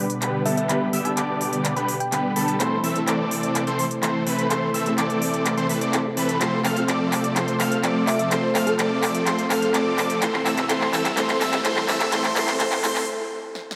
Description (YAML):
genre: EDM, festival progressive house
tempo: 126 BPM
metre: 4/4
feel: straight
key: C major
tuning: A4 = 441 Hz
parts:
  - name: dark baby grand piano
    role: accompaniment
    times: 0.0-13.8 s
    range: G3 to A4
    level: -32 LUFS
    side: equal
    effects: none
  - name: lush unison pad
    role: sustained chords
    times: 0.0-13.0 s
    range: B2 to C5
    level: -32 LUFS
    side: equal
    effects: chorus
  - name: unison lead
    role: arpeggios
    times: 0.0-13.0 s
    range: A5 to F6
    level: -32 LUFS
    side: equal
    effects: tape echo
  - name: supersaw chords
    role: riff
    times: 0.0-13.0 s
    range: D3 to F5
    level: -27 LUFS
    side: equal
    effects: low-pass filter, tape echo
  - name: big-room dance drum kit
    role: drums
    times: 0.1-13.8 s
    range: handclaps, hi-hat, snare drum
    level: -29 LUFS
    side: equal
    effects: overdrive
  - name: thumb-piano-like synth pluck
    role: melody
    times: 0.5-2.6, 8.1-10.0 s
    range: A4 to B5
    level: -30 LUFS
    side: equal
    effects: chorus, tape echo
  - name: riser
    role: sound effects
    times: 9.9-13.1 s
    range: none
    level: -37 LUFS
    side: equal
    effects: none
room: wet lush hall reverb, RT60 2.6 s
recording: high-pass filter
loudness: -22 LUFS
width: mono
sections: 0.0-13.8 A section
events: build-up 0.0-13.8; drum fill 0.0-13.1, 13.6; filter sweep on supersaw synth 0.0-13.8; filter sweep on analog synth lead 0.0-13.8; filter sweep 0.0-13.8; break 13.1-13.8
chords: 0.0 G; 2.6 Am; 6.4 F; 10.2 C